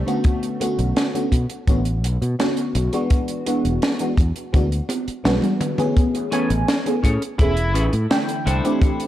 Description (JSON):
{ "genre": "vaporwave", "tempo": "84 BPM", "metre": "4/4", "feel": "straight", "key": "A major", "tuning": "A4 = 440 Hz", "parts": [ { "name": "FM electric piano with soft pad layer", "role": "accompaniment", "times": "0.0-9.1 s", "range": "D3 to G#5", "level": "-23 LUFS", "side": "equal", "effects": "phaser, lush chorus, analog delay" }, { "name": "fretless electric bass", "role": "bass", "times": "0.0-8.6 s", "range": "E1 to B2", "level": "-21 LUFS", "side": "equal", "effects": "none" }, { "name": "compact cocktail drum kit", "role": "drums", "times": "0.1-9.1 s", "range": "hi-hat, snare drum, toms", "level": "-24 LUFS", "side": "right 1 dB", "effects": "small room ambience, gated reverb" }, { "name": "kick drum", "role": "drums", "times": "0.2-9.0 s", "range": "none", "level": "-17 LUFS", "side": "equal", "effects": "small room ambience" }, { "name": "clean electric guitar", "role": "riff", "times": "6.3-9.0 s", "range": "C#4 to C#5", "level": "-27 LUFS", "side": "left 2 dB", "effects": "analog chorus, analog delay" }, { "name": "bluesy overdriven lead guitar", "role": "melody", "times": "7.4-7.8 s", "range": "E4", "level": "-30 LUFS", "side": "equal", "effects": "distortion, tape echo" } ], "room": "small room ambience", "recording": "none", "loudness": "-18 LUFS", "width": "side -13 dB against mid", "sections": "0.0-6.0 A section; 6.0-9.1 B section", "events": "drum fill 4.9-6.0", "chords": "0.2 Bm9; 3.1 E7; 6.0 Amaj9; 8.5 C69" }